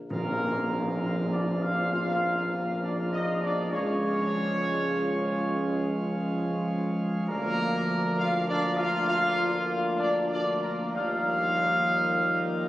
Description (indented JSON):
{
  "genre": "classical, ceremonial fanfare",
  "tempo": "67 BPM",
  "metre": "4/4",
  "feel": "straight",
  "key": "unclear",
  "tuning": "A4 = 439 Hz",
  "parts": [
    { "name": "dark trumpet section", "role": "melody", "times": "0.1-12.7 s", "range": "Bb4 to F5", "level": "-29 LUFS", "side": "equal", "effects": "none" },
    { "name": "mellow French horn section", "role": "sustained chords", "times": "0.1-12.7 s", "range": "Bb3 to F4", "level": "-32 LUFS", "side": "left 1 dB", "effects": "none" },
    { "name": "mellow trombone section", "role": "sustained chords", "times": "0.1-12.7 s", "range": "F3 to Bb3", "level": "-37 LUFS", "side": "right 1 dB", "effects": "none" },
    { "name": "pipe organ, principal chorus", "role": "sustained chords", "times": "0.1-12.7 s", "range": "F3 to G4", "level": "-32 LUFS", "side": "equal", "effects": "none" },
    { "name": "clear tuba", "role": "bass", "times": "0.1-12.7 s", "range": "Bb1 to Eb2", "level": "-33 LUFS", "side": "right 1 dB", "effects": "none" },
    { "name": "tam-tam", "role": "percussion", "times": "0.1-3.7 s", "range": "none", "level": "-39 LUFS", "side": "left 1 dB", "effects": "none" },
    { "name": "timpani", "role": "percussion", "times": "0.1-1.4 s", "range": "Bb2", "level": "-40 LUFS", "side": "equal", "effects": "none" }
  ],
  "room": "wet cathedral reverb, RT60 4.7 s",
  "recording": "recorded on a phone in the room, club reverb, compression",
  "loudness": "-25 LUFS",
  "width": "side -16 dB against mid",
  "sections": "0.1-12.7 A section",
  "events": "band accent 0.1-1.0",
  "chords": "0.1 Bb5; 3.7 Db; 7.3 Bb/D; 10.9 Ebadd9"
}